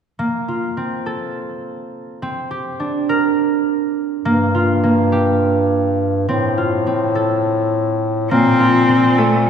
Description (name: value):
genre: contemporary instrumental, chamber music in an uneven meter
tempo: 207 BPM (eighths)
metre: 7/8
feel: straight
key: Bb major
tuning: A4 = 440 Hz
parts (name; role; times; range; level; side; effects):
- concert harp; arpeggios; 0.2-9.5 s; Bb3 to Bb4; -19 LUFS; right 2 dB; none
- clear bass clarinet; bass; 4.2-9.5 s; G2 to Bb2; -16 LUFS; left 1 dB; none
- rich cello; melody; 8.3-9.5 s; A3 to C4; -14 LUFS; left 2 dB; none
room: wet concert hall reverb, RT60 2.3 s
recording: heard from further back in the room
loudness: -15 LUFS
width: side -7 dB against mid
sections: 0.2-8.3 A section; 8.3-9.5 B section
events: none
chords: 0.2 Bbsus2; 2.2 Csus2; 4.2 Gm7; 6.3 F/A; 8.3 Bbsus2